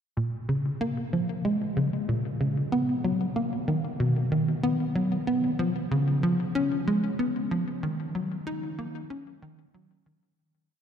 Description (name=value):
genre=ambient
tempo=94 BPM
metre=4/4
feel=straight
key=unclear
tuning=A4 = 445 Hz
part: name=tight sequencer bass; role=solo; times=0.2-10.2 s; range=A#2 to D#4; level=-25 LUFS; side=equal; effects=analog chorus, ping-pong delay
room=wet cathedral reverb, RT60 6.7 s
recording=in a vast, echoing space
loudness=-25 LUFS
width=side -8 dB against mid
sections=0.2-10.4 A section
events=fade-out 7.0-10.4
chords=none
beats=| 0.17 0.81 1.45 2.08 | 2.72 3.36 4.00 4.64 | 5.28 5.91 6.55 7.19 | 7.83 8.47 9.11 9.74